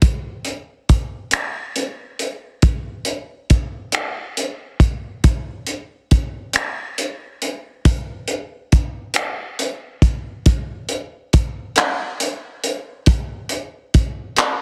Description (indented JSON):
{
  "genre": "R&B",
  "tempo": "46 BPM (dotted quarters)",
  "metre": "6/8",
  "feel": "straight",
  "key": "none",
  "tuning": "none",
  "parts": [
    { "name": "cloth-damped thuddy drum kit", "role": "drums", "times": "0.0-14.6 s", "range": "finger snaps, handclaps, hi-hat, kick drum", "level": "-19 LUFS", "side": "equal", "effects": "soft clipping on snare" }
  ],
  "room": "little or no reverb",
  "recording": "dense, heavily limited modern master",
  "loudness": "-21 LUFS",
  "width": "mono",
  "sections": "0.0-10.5 A section; 10.5-14.6 B section",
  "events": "none",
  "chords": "none",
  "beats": "| 0.03 1.33 | 2.63 3.94 | 5.24 6.55 | 7.85 9.16 | 10.46 11.77 | 13.07 14.37"
}